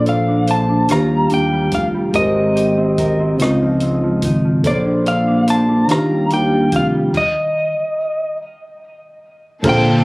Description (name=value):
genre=slow six-eight R&B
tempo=48 BPM (dotted quarters)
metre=6/8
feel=straight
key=unclear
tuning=A4 = 439 Hz
part: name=lightly driven lead guitar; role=melody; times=0.0-10.0 s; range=D5 to Bb5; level=-20 LUFS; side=equal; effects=tape echo
part: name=mellow electric guitar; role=second line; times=0.0-10.0 s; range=Db3 to C5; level=-19 LUFS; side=equal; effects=analog chorus
part: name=barky reed electric piano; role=accompaniment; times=0.0-10.0 s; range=Bb2 to F5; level=-20 LUFS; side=equal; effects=overdrive
part: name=smooth synth bass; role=bass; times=0.0-10.0 s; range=F1 to Eb2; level=-18 LUFS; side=equal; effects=none
part: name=compact cocktail drum kit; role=drums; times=0.1-9.8 s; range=crash cymbal, hi-hat, kick drum, rim click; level=-26 LUFS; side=equal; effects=none
part: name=clear studio string section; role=sustained chords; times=9.6-10.0 s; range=D3 to A4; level=-20 LUFS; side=equal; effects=none
room=studio reverb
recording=recorded on a phone in the room, studio ambience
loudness=-14 LUFS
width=side -25 dB against mid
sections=0.0-9.6 A section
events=stop 7.1-9.6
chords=0.0 Bbmaj9; 0.9 Ebmaj9; 2.1 Abmaj9; 3.4 Dbmaj9; 4.6 Bbmaj9; 5.9 Ebmaj9; 7.1 N.C.